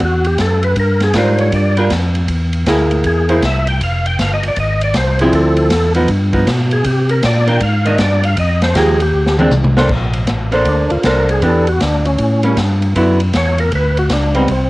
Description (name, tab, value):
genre	soul jazz organ trio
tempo	158 BPM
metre	4/4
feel	swing 65% on 8ths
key	unclear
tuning	A4 = 440 Hz
part	percussive tonewheel organ	melody	0.0-14.7 s	B3 to G5	-18 LUFS	equal	slow rotary speaker, overdrive, chorus vibrato, cassette tape
part	tonewheel organ	bass	0.0-14.7 s	F1 to C3	-15 LUFS	equal	overdrive, chorus vibrato
part	swinging big-band drum kit	drums	0.0-14.6 s	crash cymbal, hi-hat, kick drum, ride cymbal, snare drum, toms	-20 LUFS	equal	cassette tape
part	archtop guitar, miked and amplified	accompaniment	1.1-14.5 s	D3 to C5	-16 LUFS	right 1 dB	cassette tape
room	light reverb, studio ambience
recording	home recording on cassette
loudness	-12 LUFS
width	side -19 dB against mid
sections	0.0-9.9 A section; 9.9-14.7 A section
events	tonewheel organ solo 0.0-9.9, 9.9-14.7; drum fill 9.1-9.9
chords	0.0 D (rootless); 0.8 Gm7; 2.3 C7b13; 3.8 Fmadd9; 5.3 Dm9; 6.1 G7b13; 6.9 Cm9; 8.4 Fm9; 9.1 Bb9; 9.9 Bbmaj9; 11.4 Em7; 12.2 A7b9; 13.0 D69